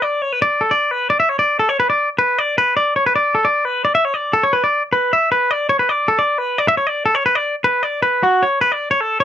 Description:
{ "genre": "rock", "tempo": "307 BPM (eighths)", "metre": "7/8", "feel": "straight", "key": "unclear", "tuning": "A4 = 439 Hz", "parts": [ { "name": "twangy electric guitar", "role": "solo", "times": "0.0-9.2 s", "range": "F#4 to E5", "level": "-14 LUFS", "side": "left 1 dB", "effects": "none" } ], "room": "little or no reverb", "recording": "dry, close 1970s-style studio recording", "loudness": "-14 LUFS", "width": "side -10 dB against mid", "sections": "0.0-8.2 A section; 8.2-9.2 B section", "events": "none", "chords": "none" }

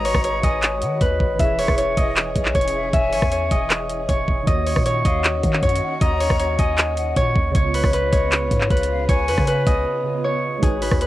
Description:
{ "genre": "hip hop, trap", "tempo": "156 BPM", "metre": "4/4", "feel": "half-time", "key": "Eb minor", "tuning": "A4 = 440 Hz", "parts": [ { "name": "Celtic harp", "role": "melody", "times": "0.0-11.1 s", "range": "Ab4 to E5", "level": "-21 LUFS", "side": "left 1 dB", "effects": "low-pass filter, cassette tape" }, { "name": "breathy mellow silver concert flute", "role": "second line", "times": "0.0-9.8 s", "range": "Eb5 to Bb5", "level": "-31 LUFS", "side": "left 7 dB", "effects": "tape echo" }, { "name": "barky tine electric piano", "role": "accompaniment", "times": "0.0-11.1 s", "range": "Db3 to C#5", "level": "-32 LUFS", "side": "right 7 dB", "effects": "ensemble chorus, low-pass filter" }, { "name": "warm symphonic string section", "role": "sustained chords", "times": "0.0-11.1 s", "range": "Db3 to Cb5", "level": "-33 LUFS", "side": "left 1 dB", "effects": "none" }, { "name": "long sustained 808-style bass", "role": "bass", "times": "0.0-11.1 s", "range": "E1 to Eb3", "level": "-25 LUFS", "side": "equal", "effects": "none" }, { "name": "trap drum kit", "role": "drums", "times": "0.0-11.1 s", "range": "handclaps, hi-hat, kick drum, rim click", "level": "-20 LUFS", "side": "equal", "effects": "cassette tape" } ], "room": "little or no reverb", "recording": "home recording on cassette", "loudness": "-17 LUFS", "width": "side -15 dB against mid", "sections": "0.0-4.5 A section; 4.5-11.1 A section", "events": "break 9.9-10.6", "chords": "0.0 Abm7; 1.4 E6; 4.5 Ebm7; 7.5 Db7" }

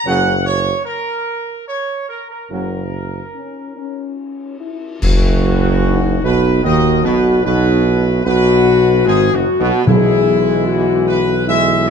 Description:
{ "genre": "classical, ceremonial fanfare", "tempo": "74 BPM", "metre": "3/4", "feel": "straight", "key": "B major", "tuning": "A4 = 440 Hz", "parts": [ { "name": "warm trumpet section", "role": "melody", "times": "0.0-11.8 s", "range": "E4 to F#5", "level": "-20 LUFS", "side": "right 1 dB", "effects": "none" }, { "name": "warm tuba", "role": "bass", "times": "0.0-11.9 s", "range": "F#1 to D#2", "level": "-17 LUFS", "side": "right 4 dB", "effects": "none" }, { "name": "clear trombone section", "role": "sustained chords", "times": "0.1-11.9 s", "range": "F#2 to G#3", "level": "-19 LUFS", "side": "right 3 dB", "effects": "none" }, { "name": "mellow French horn section", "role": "sustained chords", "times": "0.1-11.9 s", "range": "A#3 to G#4", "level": "-18 LUFS", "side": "left 8 dB", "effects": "none" }, { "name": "cymbal swell, clash cymbals and concert bass drum", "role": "percussion", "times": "2.5-6.6 s", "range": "none", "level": "-21 LUFS", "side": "left 1 dB", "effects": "none" }, { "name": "timpani", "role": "percussion", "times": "9.9-11.0 s", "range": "B2", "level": "-16 LUFS", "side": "equal", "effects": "none" } ], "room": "light reverb", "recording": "dark, warm production", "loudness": "-12 LUFS", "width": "side -6 dB against mid", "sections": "0.0-5.0 A section; 5.0-11.9 B section", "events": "band accent 5.0-5.8", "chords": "0.0 F#; 5.0 B/F#; 9.9 E/B" }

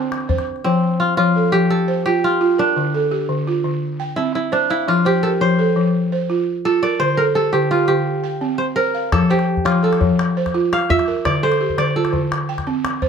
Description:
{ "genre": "west african traditional, West African string and xylophone music", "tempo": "113 BPM (dotted quarters)", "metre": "12/8", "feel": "straight", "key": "F major", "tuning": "A4 = 438 Hz", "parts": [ { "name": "kora", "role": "melody", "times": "0.0-13.1 s", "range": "C4 to F5", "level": "-20 LUFS", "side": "equal", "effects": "none" }, { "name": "balafon", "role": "arpeggios", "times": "0.0-13.1 s", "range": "D3 to G5", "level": "-18 LUFS", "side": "right 1 dB", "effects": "none" }, { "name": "calabash", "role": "percussion", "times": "0.1-0.6, 9.1-13.1 s", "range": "none", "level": "-23 LUFS", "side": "left 3 dB", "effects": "none" } ], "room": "moderate studio reverb, RT60 0.6 s", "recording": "faint mains hum", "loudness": "-16 LUFS", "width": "side -7 dB against mid", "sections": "0.6-13.1 A section", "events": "kora solo 0.6-13.1", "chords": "0.0 C5; 0.6 F; 2.8 Dm; 3.8 C5; 4.9 F; 7.0 Dm; 8.1 C5; 9.1 F; 11.3 Dm; 12.3 C5" }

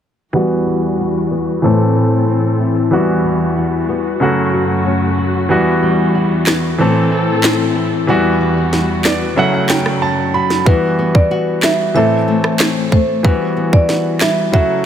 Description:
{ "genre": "dancehall", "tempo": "93 BPM", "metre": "4/4", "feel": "straight", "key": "E minor", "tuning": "A4 = 440 Hz", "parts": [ { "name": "clear baby grand piano", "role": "accompaniment", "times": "0.3-14.9 s", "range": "C#3 to B5", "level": "-16 LUFS", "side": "right 2 dB", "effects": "sidechain pumping, low-pass filter" }, { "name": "warm studio string section", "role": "sustained chords", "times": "0.5-10.7 s", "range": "E2 to A4", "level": "-19 LUFS", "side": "right 1 dB", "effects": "sidechain pumping, low-pass filter" }, { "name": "nylon-string guitar", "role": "arpeggios", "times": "0.3-14.9 s", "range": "A2 to F#4", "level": "-18 LUFS", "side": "left 5 dB", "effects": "low-pass filter, ping-pong delay" }, { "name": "island pop drum kit", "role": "drums", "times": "6.5-14.7 s", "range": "handclaps, kick drum, rim click, snare drum", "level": "-15 LUFS", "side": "right 1 dB", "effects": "none" }, { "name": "marimba with medium mallets", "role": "melody", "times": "10.7-14.9 s", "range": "B4 to E5", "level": "-18 LUFS", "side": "right 2 dB", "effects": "ping-pong delay" } ], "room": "light reverb, studio ambience", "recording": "none", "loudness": "-12 LUFS", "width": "side -9 dB against mid", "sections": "0.3-10.7 A section; 10.7-14.9 B section", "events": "filter sweep 0.3-10.7; grand piano fill 8.7-10.7", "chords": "0.3 Emadd9; 1.6 Am; 2.9 Emadd9; 4.2 F#m; 5.5 Emadd9; 6.8 Am; 8.1 Emadd9; 9.4 F#m; 10.7 Emadd9; 12.0 Am; 13.2 Emadd9" }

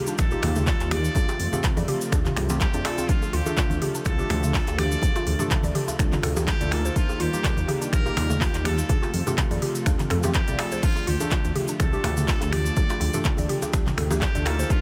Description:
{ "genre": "afro house", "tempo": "124 BPM", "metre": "4/4", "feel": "swing 55% on 16ths", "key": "D phrygian", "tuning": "A4 = 441 Hz", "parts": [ { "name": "warm analog pad", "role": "sustained chords", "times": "0.0-14.8 s", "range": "C3 to G4", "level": "-36 LUFS", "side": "equal", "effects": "chorus, sidechain pumping" }, { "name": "mallet-like synth pluck", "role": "arpeggios", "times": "0.0-14.8 s", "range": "A3 to D5", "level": "-35 LUFS", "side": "equal", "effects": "chorus, sidechain pumping, analog delay" }, { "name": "warm analog keys", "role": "stabs", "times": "0.0-14.8 s", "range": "A3 to D5", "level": "-36 LUFS", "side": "equal", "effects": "chorus, sidechain pumping, analog delay" }, { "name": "afro-pop drum kit", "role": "drums", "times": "0.1-14.8 s", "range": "crash cymbal, finger snaps, handclaps, hi-hat, toms", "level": "-32 LUFS", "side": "equal", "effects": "none" }, { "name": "tube shaker", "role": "percussion", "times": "0.1-14.8 s", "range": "none", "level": "-41 LUFS", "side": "equal", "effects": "none" }, { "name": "trumpet with straight mute", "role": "melody", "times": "0.2-14.8 s", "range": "F4 to D5", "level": "-35 LUFS", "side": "equal", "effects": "analog delay" }, { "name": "dark detuned saw bass", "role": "bass", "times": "0.2-14.6 s", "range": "Bb1 to F2", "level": "-29 LUFS", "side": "equal", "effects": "sidechain pumping" }, { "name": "electronic kick drum", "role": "drums", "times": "0.2-14.8 s", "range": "none", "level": "-26 LUFS", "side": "equal", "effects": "none" }, { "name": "congas", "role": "percussion", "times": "0.2-14.4 s", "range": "none", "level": "-36 LUFS", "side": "equal", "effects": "none" }, { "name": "djembe", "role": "percussion", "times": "0.3-14.7 s", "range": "none", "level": "-38 LUFS", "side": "equal", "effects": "none" } ], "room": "light reverb", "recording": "none", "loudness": "-24 LUFS", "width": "mono", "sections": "0.0-14.8 A section", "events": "none", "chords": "0.0 Ebadd9; 1.2 F; 3.1 Dm; 7.0 Ebadd9; 8.9 F; 10.8 Dm" }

